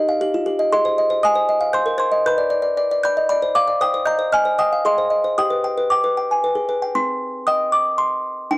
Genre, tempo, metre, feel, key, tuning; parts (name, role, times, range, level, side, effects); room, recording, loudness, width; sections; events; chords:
classical, lullaby for music box; 116 BPM; 3/4; straight; C minor; A4 = 440 Hz
music box; solo; 0.0-8.6 s; C4 to Ab6; -16 LUFS; equal
moderate studio reverb, RT60 0.5 s; dry, gritty hardware recording; -16 LUFS; side -21 dB against mid
0.0-6.9 A section; 6.9-8.6 B section
0.0 Eb; 0.7 Ab; 2.3 G/B; 3.8 Cm; 4.8 Ab; 5.4 G; 6.9 Cm